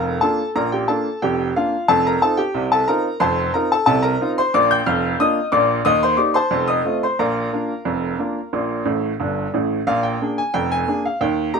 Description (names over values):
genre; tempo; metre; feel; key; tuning
ragtime piano; 90 BPM; 2/4; straight; Bb major; A4 = 437 Hz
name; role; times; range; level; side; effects
bright upright piano; solo; 0.0-11.6 s; F1 to G6; -17 LUFS; equal; none
room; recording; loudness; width
light reverb; minimal, uncompressed stereo recording; -17 LUFS; side -5 dB against mid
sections
0.0-9.9 A section; 9.9-11.6 B section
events
upright piano fill 8.9-9.9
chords
0.0 Bb; 1.9 F7; 4.5 Bb; 5.9 Eb; 6.5 F7; 7.2 Bb; 9.9 Bb7